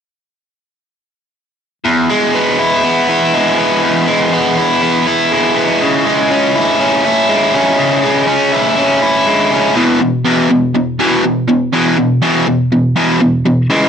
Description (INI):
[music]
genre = rock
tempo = 121 BPM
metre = 4/4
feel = straight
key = E major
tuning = A4 = 441 Hz
[part]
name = biting overdriven guitar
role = riff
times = 1.8-13.9 s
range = E2 to E4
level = -10 LUFS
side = equal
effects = none
[sound]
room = moderate studio reverb, RT60 0.6 s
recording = none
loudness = -10 LUFS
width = side -7 dB against mid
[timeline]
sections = 1.9-9.8 A section; 9.8-13.9 B section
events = none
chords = 1.9 E; 5.8 C#m; 9.8 E5